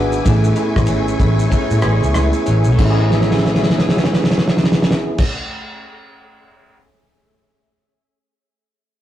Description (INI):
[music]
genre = indie pop, bedroom pop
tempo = 95 BPM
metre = 4/4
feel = swing 60% on 16ths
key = A major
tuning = A4 = 437 Hz
[part]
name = electric guitar through a small old amp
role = accompaniment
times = 0.0-5.8 s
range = E3 to G#4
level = -23 LUFS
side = equal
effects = vibrato effect
[part]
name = mellow tonewheel organ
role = accompaniment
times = 0.0-5.2 s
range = B3 to G#4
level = -22 LUFS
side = right 2 dB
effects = fast rotary speaker
[part]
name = soft string machine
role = sustained chords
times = 0.0-5.2 s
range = A3 to D6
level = -25 LUFS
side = left 3 dB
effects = ensemble chorus
[part]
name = vintage muted picked electric bass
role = bass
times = 0.0-5.2 s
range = G#1 to A2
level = -17 LUFS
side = equal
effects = none
[part]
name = cloth-damped thuddy drum kit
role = drums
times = 0.1-6.8 s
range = crash cymbal, kick drum, ride cymbal, rim click, shaker, snare drum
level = -18 LUFS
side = equal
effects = none
[sound]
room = moderate stone room reverb, RT60 1.2 s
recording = rough rehearsal-room recording, tube saturation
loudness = -13 LUFS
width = side -12 dB against mid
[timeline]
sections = 0.0-2.8 A section; 2.8-5.3 B section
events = drum fill 3.1-5.1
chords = 0.3 Amaj7